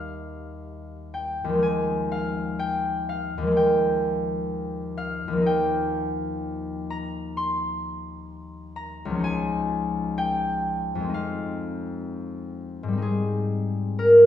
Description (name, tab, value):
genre	classical, solo harp piece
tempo	63 BPM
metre	4/4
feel	rubato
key	Eb mixolydian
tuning	A4 = 441 Hz
part	concert harp	solo	0.0-14.3 s	Db2 to C6	-22 LUFS	left 1 dB	none
room	wet recital hall reverb, RT60 1.6 s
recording	heard from further back in the room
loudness	-24 LUFS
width	side -10 dB against mid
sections	0.0-14.3 A section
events	none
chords	0.0 Ebmaj7; 1.6 Fm11/Eb; 5.5 Ebadd9; 9.2 Dbadd9; 11.1 Fm7; 13.0 Abmaj7